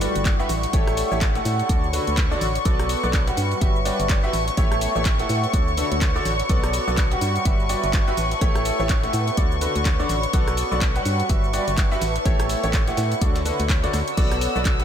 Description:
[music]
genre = piano house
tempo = 125 BPM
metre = 4/4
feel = swing 59% on 16ths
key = unclear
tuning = A4 = 439 Hz
[part]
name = warm studio string section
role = sustained chords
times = 0.0-14.8 s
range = C#6 to E6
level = -29 LUFS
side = left 3 dB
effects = sidechain pumping
[part]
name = bright grand piano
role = riff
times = 0.0-14.8 s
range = D3 to F#5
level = -25 LUFS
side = equal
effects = analog chorus, sidechain pumping, diffuse ambient delay
[part]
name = organ-like FM bass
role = bass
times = 0.0-14.8 s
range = G1 to A2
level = -26 LUFS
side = equal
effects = sidechain pumping
[part]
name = breakbeat sampler-style drum kit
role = drums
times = 0.0-14.8 s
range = hi-hat, snare drum, tambourine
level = -40 LUFS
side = right 1 dB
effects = none
[part]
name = house drum kit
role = drums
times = 0.0-14.8 s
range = crash cymbal, handclaps, hi-hat, ride cymbal, rim click, shaker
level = -30 LUFS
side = left 1 dB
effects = none
[part]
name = impact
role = sound effects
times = 0.0-0.7 s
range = none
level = barely audible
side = none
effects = none
[part]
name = granular cloud pad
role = texture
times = 0.0-14.8 s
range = A4 to B5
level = -30 LUFS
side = right 1 dB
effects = built-in reverb, lush chorus, sidechain pumping
[part]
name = electronic kick drum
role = drums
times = 0.3-14.8 s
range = none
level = -21 LUFS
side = equal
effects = none
[sound]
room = light reverb, digital ambience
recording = none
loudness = -19 LUFS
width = side -9 dB against mid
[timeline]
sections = 0.0-14.8 A section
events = impact 0.0-0.7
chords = 0.5 A7; 1.7 Dmaj7; 2.7 Bm7; 3.4 Gmaj7; 4.3 A7; 5.5 Dmaj7; 6.5 Bm7; 7.2 Gmaj7; 8.2 A7; 9.4 Dmaj7; 10.3 Bm7; 11.1 Gmaj7; 12.0 A7; 13.2 Dmaj7; 14.2 Bm7

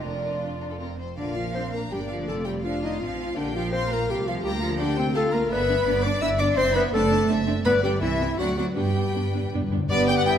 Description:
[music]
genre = quick classical-period movement for symphony orchestra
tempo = 166 BPM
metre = 3/4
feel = rubato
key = Bb major, G major from 5.5 s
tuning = A4 = 438 Hz
[part]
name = rich chamber violin section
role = melody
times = 0.0-10.3 s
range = F4 to Bb5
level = -32 LUFS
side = left 3 dB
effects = none
[part]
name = large flute ensemble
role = second line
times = 0.0-0.8, 9.9-10.4 s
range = D5 to G5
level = -33 LUFS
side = right 1 dB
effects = none
[part]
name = rich chamber violin section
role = second line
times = 0.0-10.4 s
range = F4 to E6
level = -33 LUFS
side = left 1 dB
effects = none
[part]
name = rich chamber viola section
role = accompaniment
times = 0.0-10.4 s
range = G3 to G4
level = -31 LUFS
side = equal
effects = none
[part]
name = clear chamber cello section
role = bass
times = 0.0-10.4 s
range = F2 to E4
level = -30 LUFS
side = right 3 dB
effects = none
[part]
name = rich chamber double bass section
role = bass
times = 0.0-10.4 s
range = F1 to G2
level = -29 LUFS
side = right 2 dB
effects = none
[part]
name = warm clarinet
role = second line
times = 1.2-10.4 s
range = C4 to E5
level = -26 LUFS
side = left 2 dB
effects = none
[part]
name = timpani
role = percussion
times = 7.7-10.4 s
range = G2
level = -30 LUFS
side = left 1 dB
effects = none
[part]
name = clear oboe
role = second line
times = 9.9-10.3 s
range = D5 to G5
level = -31 LUFS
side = right 1 dB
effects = none
[part]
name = mellow bassoon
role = accompaniment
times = 9.9-10.4 s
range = B3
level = -27 LUFS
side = right 3 dB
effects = none
[part]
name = warm French horn section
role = sustained chords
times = 9.9-10.4 s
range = B3 to G4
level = -29 LUFS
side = left 8 dB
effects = none
[sound]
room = moderate scoring stage reverb, RT60 1.9 s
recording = none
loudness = -22 LUFS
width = side -9 dB against mid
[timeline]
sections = 0.0-1.2 A section; 1.2-9.9 B section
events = timpani fill 8.8-9.9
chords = 0.0 Bb/F; 0.8 F5; 1.2 Bb; 2.3 F7; 3.4 Bb; 4.4 Bb/D; 5.5 G; 6.6 D7/F#; 7.7 G; 8.0 C; 8.4 D7; 8.8 G

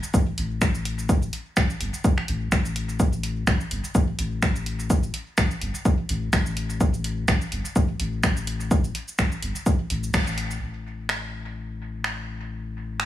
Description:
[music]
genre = dub techno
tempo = 126 BPM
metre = 4/4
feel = swing 56% on 16ths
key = unclear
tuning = A4 = 440 Hz
[part]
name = deep house drum kit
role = drums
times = 0.0-13.1 s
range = finger snaps, hi-hat, shaker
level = -28 LUFS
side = right 1 dB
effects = overdrive, dub echo
[part]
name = soft dub sub bass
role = bass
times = 0.1-13.1 s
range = G1 to A1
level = -28 LUFS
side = left 1 dB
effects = sidechain pumping
[part]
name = electronic kick drum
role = drums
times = 0.1-10.2 s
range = none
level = -23 LUFS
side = equal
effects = overdrive
[sound]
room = little or no reverb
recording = echo-heavy mix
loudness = -22 LUFS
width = side -13 dB against mid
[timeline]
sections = 0.0-10.6 A section; 10.6-13.1 B section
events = band accent 10.1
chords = none

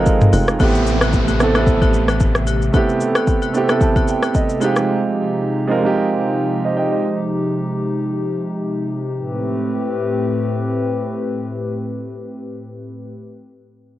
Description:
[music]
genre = amapiano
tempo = 112 BPM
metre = 4/4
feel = swing 55% on 16ths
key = A minor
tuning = A4 = 439 Hz
[part]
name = warm baby grand piano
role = accompaniment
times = 0.0-7.2 s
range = Ab3 to A5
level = -18 LUFS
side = right 3 dB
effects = cassette tape, plate reverb
[part]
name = hollow soft pad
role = sustained chords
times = 0.0-13.1 s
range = A2 to G5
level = -22 LUFS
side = left 1 dB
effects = chorus, sidechain pumping, cassette tape
[part]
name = tight log drum bass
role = bass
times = 0.0-0.6 s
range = F1 to Ab1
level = -20 LUFS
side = left 1 dB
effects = none
[part]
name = afro-pop drum kit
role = drums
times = 0.1-4.9 s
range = hi-hat, kick drum, rim click, shaker, toms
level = -17 LUFS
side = left 1 dB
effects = overdrive, cassette tape
[part]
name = agogo bells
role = percussion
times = 0.3-4.8 s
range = none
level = -29 LUFS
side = left 10 dB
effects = none
[part]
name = sub bass with octave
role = bass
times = 0.6-2.7 s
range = A1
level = -20 LUFS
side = left 1 dB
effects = none
[part]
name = downlifter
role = sound effects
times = 0.6-4.9 s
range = none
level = -27 LUFS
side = left 2 dB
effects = none
[sound]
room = light reverb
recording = home recording on cassette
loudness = -16 LUFS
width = side -14 dB against mid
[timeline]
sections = 0.6-9.2 A section; 9.2-13.5 B section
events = grand piano fill 3.3-4.9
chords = 0.0 Fm9; 0.6 Am9; 4.6 Fm9; 9.2 Am9

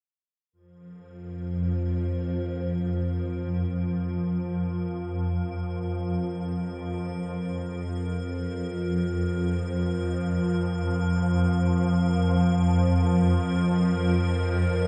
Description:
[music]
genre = dark ambient drone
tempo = free time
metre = none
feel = none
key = unclear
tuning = A4 = 443 Hz
[part]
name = swarming drone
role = drone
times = 0.9-14.9 s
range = F2 to F3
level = -27 LUFS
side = equal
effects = built-in reverb
[part]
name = icy glass pad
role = texture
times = 1.3-14.9 s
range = Bb4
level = -40 LUFS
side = equal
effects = chorus, built-in reverb
[sound]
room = wet cathedral reverb, RT60 5.1 s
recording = nothing above 10.9 kHz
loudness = -27 LUFS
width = mono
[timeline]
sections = 0.5-14.9 A section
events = fade-in on ambient pad 0.5-14.9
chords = 0.5 Fsus4

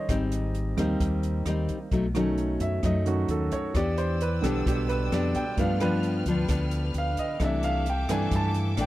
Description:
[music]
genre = bossa nova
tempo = 131 BPM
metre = 4/4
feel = straight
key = C major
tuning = A4 = 440 Hz
[part]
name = clear grand piano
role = accompaniment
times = 0.0-8.9 s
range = D3 to A5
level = -30 LUFS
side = right 3 dB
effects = none
[part]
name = nylon-string guitar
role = accompaniment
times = 0.0-8.9 s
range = F#2 to G4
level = -29 LUFS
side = left 3 dB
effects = none
[part]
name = fingered electric bass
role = bass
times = 0.1-8.9 s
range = Ab1 to G2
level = -28 LUFS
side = equal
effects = none
[part]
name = open jazz drum kit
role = drums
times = 0.1-8.9 s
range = hi-hat, kick drum, rim click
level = -32 LUFS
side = equal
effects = none
[part]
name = clear studio violin section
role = sustained chords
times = 3.8-8.9 s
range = A4 to F6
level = -38 LUFS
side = left 2 dB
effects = none
[sound]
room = little or no reverb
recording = dry, close 1970s-style studio recording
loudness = -24 LUFS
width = side -15 dB against mid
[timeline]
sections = 0.0-8.9 A section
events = grand piano solo 0.0-8.9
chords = 0.1 Abmaj7; 1.9 B7; 3.8 Em7; 5.6 G7; 7.4 C69

